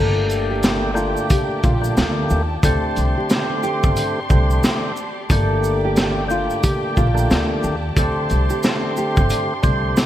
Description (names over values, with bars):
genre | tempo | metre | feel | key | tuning
hip hop, boom-bap hip-hop | 90 BPM | 4/4 | swing 60% on 16ths | G minor | A4 = 440 Hz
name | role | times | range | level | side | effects
nylon-string guitar | melody | 0.0-9.5 s | F4 to A4 | -25 LUFS | left 1 dB | wide subtle chorus, high-pass filter, low-pass filter, digital delay
percussive tonewheel organ | accompaniment | 0.0-10.1 s | D3 to G4 | -22 LUFS | equal | slow rotary speaker, cassette tape, high-pass filter, low-pass filter
warm studio string section | sustained chords | 0.0-10.1 s | G4 to C6 | -30 LUFS | left 1 dB | high-pass filter, low-pass filter
upright bass | bass | 0.0-9.9 s | G1 to Eb2 | -21 LUFS | equal | none
crunchy breakbeat drum kit | drums | 0.3-10.1 s | hi-hat, kick drum, shaker, snare drum | -20 LUFS | equal | gated reverb
tube shaker | percussion | 0.3-10.1 s | none | -40 LUFS | right 5 dB | none
room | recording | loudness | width
light reverb, studio reverb | bright 1980s-style digital production, vinyl crackle | -16 LUFS | side -12 dB against mid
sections
0.0-10.1 A section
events
none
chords
0.0 Gmadd9; 2.6 D7sus4; 5.3 Gmadd9; 8.0 D7sus4